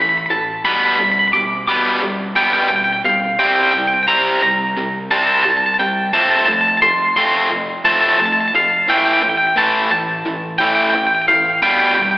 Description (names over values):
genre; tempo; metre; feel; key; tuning
rock; 88 BPM; 4/4; straight; A minor; A4 = 440 Hz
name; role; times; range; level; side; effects
twangy electric guitar; melody; 0.0-12.2 s; F5 to D6; -14 LUFS; equal; spring reverb
distorted electric guitar; riff; 0.0-12.2 s; A2 to C4; -18 LUFS; equal; overdrive
room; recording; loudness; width
wet concert hall reverb, RT60 2.3 s; recorded in a church or concert hall, AM radio sound; -13 LUFS; side -19 dB against mid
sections
0.0-12.2 A section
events
build-up 0.0-12.2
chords
0.0 A5; 0.7 G/B; 3.4 C5; 6.1 F; 8.9 A5; 11.6 G/B